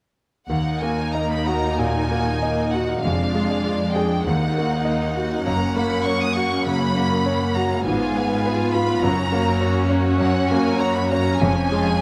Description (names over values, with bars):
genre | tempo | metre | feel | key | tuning
classical | 91-106 BPM | 4/4 | rubato | Eb minor | A4 = 440 Hz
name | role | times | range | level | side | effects
clear grand piano | melody | 0.5-12.0 s | Eb2 to Eb5 | -25 LUFS | equal | none
rich studio violin section | melody | 0.5-12.0 s | F5 to Eb6 | -29 LUFS | equal | none
warm studio violin section | second line | 0.5-12.0 s | Ab3 to Gb5 | -32 LUFS | equal | none
rich studio viola section | accompaniment | 0.5-12.0 s | Ab3 to Gb4 | -28 LUFS | equal | none
rich studio cello section | bass | 0.5-12.0 s | Eb2 to Ab2 | -28 LUFS | equal | none
warm studio double bass section | bass | 0.5-12.0 s | F1 to Eb2 | -32 LUFS | equal | none
room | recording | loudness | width
light reverb | close, detailed microphones | -21 LUFS | mono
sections
0.5-12.0 A section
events
none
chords
0.5 Ebm; 3.0 Ddim/F; 4.3 Ebm; 5.5 Gb; 7.9 Fdim/Ab; 9.0 Gb; 11.4 C#/E#